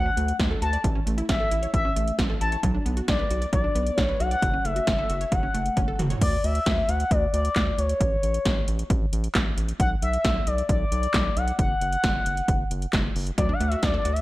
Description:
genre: synth-pop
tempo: 134 BPM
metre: 4/4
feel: straight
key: D major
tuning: A4 = 440 Hz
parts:
  - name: expressive synth lead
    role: melody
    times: 0.0-14.2 s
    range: C#5 to A5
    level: -27 LUFS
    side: left 2 dB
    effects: chorus, slapback echo
  - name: wide unison pluck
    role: arpeggios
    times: 0.0-6.2, 13.4-14.1 s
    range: E3 to D5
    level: -32 LUFS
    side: right 2 dB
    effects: slapback echo
  - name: round analog bass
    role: bass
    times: 0.0-14.2 s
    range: F#1 to D2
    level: -27 LUFS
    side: equal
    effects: none
  - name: 80s electronic pad drums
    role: drums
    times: 0.2-14.2 s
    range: crash cymbal, handclaps, hi-hat, kick drum, snare drum, toms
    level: -25 LUFS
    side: equal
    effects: gated reverb on snare and toms
room: light reverb, digital ambience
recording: none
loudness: -22 LUFS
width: side -17 dB against mid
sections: 0.0-6.2 A section; 6.2-14.2 B section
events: drum fill 5.8-6.2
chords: 0.0 D; 0.8 A; 2.6 Bm; 4.4 F#m; 6.2 Dmaj9; 8.0 A; 9.8 Bm; 11.6 N.C.; 13.4 D

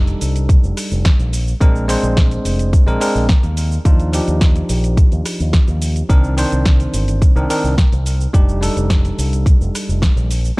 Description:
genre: nu-disco, nu disco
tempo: 107 BPM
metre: 4/4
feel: straight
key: unclear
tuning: A4 = 441 Hz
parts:
  - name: bell-like tine electric piano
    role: accompaniment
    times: 0.0-10.6 s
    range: Eb3 to C5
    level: -21 LUFS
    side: equal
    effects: vintage 12-bit sampler grit, sidechain pumping, tape echo
  - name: fingered electric bass with an envelope filter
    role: bass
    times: 0.0-10.5 s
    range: F1 to Eb2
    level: -18 LUFS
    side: equal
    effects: none
  - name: house drum kit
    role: drums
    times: 0.1-10.6 s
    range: hi-hat, rim click, shaker, snare drum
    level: -24 LUFS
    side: equal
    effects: studio reverb
  - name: electronic kick drum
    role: drums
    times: 0.5-10.1 s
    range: none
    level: -12 LUFS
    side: equal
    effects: studio reverb
room: little or no reverb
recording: dark, warm production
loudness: -13 LUFS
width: side -24 dB against mid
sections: 0.0-10.6 A section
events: none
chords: 0.0 F13; 1.3 Bb9; 3.6 Ebmaj9; 6.1 Cm9; 8.3 F13

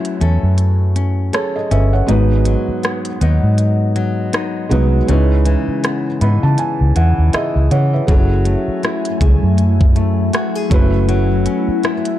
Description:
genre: contemporary R&B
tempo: 80 BPM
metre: 4/4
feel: swing 58% on 16ths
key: F# dorian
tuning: A4 = 440 Hz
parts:
  - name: felt-muted upright piano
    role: accompaniment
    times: 0.0-12.2 s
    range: G#3 to B5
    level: -21 LUFS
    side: right 3 dB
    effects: none
  - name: flamenco guitar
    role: arpeggios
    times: 0.0-12.2 s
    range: G#2 to A4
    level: -22 LUFS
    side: left 5 dB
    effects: none
  - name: trap drum kit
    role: drums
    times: 0.0-12.2 s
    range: hi-hat, kick drum, rim click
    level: -18 LUFS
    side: equal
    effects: vintage 12-bit sampler grit
  - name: vintage muted fingered electric bass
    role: bass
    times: 0.2-11.7 s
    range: F#1 to C#3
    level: -14 LUFS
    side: equal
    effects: none
  - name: ethereal airy pad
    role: sustained chords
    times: 8.7-12.2 s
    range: F#3 to G#5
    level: -21 LUFS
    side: left 3 dB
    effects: ensemble chorus, built-in reverb, phaser
room: digital ambience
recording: dark, warm production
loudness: -13 LUFS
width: side -13 dB against mid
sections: 0.0-12.2 A section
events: break 0.0-8.1; felt piano fill 5.8-8.1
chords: 0.0 B9sus4; 2.1 G#m7; 5.1 C#m9; 8.1 F#m9; 10.7 B9sus4/F#

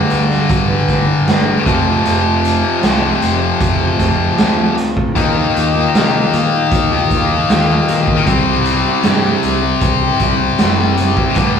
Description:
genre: quiet-loud alternative rock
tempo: 77 BPM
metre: 4/4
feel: straight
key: unclear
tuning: A4 = 440 Hz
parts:
  - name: electric guitar at the edge of break-up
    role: arpeggios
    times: 0.0-11.6 s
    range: C3 to B4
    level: -20 LUFS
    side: right 4 dB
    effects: none
  - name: heavy high-gain guitar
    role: riff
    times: 0.0-11.6 s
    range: F2 to Eb4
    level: -15 LUFS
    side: left 4 dB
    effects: distortion
  - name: overdriven picked electric bass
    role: bass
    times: 0.1-11.6 s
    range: F1 to C3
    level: -20 LUFS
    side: right 1 dB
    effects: none
  - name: raw garage drum kit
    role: drums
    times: 0.1-11.5 s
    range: hi-hat, kick drum, snare drum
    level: -18 LUFS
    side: right 1 dB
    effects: none
room: moderate large studio reverb, RT60 1.1 s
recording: band playing live in one room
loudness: -12 LUFS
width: side -7 dB against mid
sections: 0.0-11.6 A section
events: none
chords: 0.0 Gadd9; 1.7 F; 5.2 Ebadd9; 8.3 C

